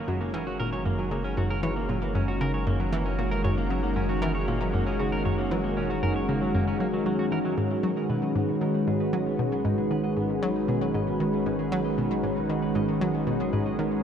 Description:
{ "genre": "ambient, sequencer-driven space music", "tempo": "116 BPM", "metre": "4/4", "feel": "straight", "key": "G# minor", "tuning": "A4 = 438 Hz", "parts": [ { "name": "lush unison pad", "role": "sustained chords", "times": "0.0-14.0 s", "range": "D#3 to B4", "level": "-27 LUFS", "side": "equal", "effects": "chorus, shimmer reverb" }, { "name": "semi-hollow electric guitar", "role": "arpeggios", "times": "0.0-14.0 s", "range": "F#3 to D#5", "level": "-34 LUFS", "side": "right 2 dB", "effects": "auto-pan, tape echo, shimmer reverb" }, { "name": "analog pluck", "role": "riff", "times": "0.0-14.0 s", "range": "F#2 to F#3", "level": "-29 LUFS", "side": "equal", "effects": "chorus, tape echo" }, { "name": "round analog bass", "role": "bass", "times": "0.0-14.0 s", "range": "F#1 to G#1", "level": "-35 LUFS", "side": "equal", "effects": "none" } ], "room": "wet cathedral reverb, RT60 5.5 s", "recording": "in a vast, echoing space", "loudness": "-24 LUFS", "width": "side -8 dB against mid", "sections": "0.0-7.6 A section; 7.6-14.0 A section", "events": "none", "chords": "0.0 F#; 7.6 G#m", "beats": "0.34 0.86 | 1.37 1.89 2.41 2.93 | 3.44 3.96 4.48 5.00 | 5.51 6.03 6.55 7.06 | 7.58 8.10 8.62 9.13 | 9.65 10.17 10.68 11.20 | 11.72 12.24 12.75 13.27 | 13.79" }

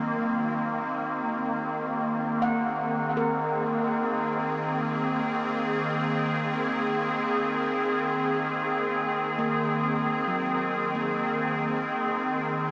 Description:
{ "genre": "ambient", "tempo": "free time", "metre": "none", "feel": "none", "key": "unclear", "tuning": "A4 = 435 Hz", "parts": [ { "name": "evolving wavetable pad", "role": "sustained chords", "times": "0.0-12.7 s", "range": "Eb3 to Ab4", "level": "-25 LUFS", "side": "equal", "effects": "ensemble chorus, built-in reverb" }, { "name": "handpan", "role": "arpeggios", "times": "0.0-12.7 s", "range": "Gb3 to Gb5", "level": "-33 LUFS", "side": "equal", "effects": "diffuse ambient delay" }, { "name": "analog drone", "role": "drone", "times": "0.0-12.7 s", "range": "Eb3 to Bb3", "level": "-41 LUFS", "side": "equal", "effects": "none" } ], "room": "wet huge ambient reverb, RT60 8.4 s", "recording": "dreamy mix soaked in reverb, small speaker sound", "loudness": "-24 LUFS", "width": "side -34 dB against mid", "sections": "0.0-12.7 A section", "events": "filter sweep on ambient pad 0.0-12.7", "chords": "0.0 Abadd9/Eb", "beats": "free time" }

